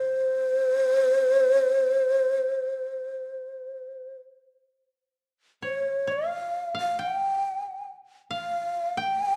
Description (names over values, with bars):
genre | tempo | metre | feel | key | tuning
japanese traditional, Japanese chamber music | 60-70 BPM | 4/4 | rubato | C in sen | A4 = 439 Hz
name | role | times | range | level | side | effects
breathy mellow long shakuhachi | melody | 0.0-9.4 s | C5 to G5 | -26 LUFS | equal | none
koto | second line | 0.0-9.4 s | Bb4 to Bb5 | -37 LUFS | equal | none
room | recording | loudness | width
moderate recital hall reverb, RT60 1.4 s | dark, warm production | -26 LUFS | mono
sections
0.0-5.2 A section; 5.2-9.4 B section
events
none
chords
none